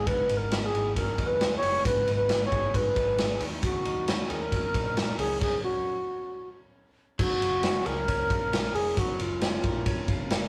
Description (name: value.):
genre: jangly indie pop.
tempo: 135 BPM.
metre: 4/4.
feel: straight.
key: F# major.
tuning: A4 = 439 Hz.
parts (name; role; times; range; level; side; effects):
mellow reedy alto flute; melody; 0.0-10.1 s; E#4 to C#5; -30 LUFS; equal; none.
direct-recorded clean electric guitar; arpeggios; 0.0-10.5 s; G#2 to A#4; -41 LUFS; equal; harmonic tremolo, tape echo.
vintage muted picked electric bass; bass; 0.0-10.5 s; E#1 to A#2; -38 LUFS; equal; none.
raw garage drum kit; drums; 0.1-10.4 s; crash cymbal, hi-hat, kick drum, ride cymbal, snare drum; -32 LUFS; equal; none.
room: moderate small room reverb, RT60 0.6 s.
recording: rough rehearsal-room recording.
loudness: -27 LUFS.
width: mono.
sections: 0.0-7.2 A section; 7.2-10.5 A section.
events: stop 5.4-7.2.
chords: 0.0 G#m7; 3.4 D#m7; 7.2 F#maj7.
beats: | 0.07 0.52 0.96 1.41 | 1.85 2.30 2.74 3.19 | 3.63 4.08 4.52 4.97 | 5.41 5.86 6.30 6.75 | 7.19 7.64 8.08 8.53 | 8.97 9.42 9.86 10.31.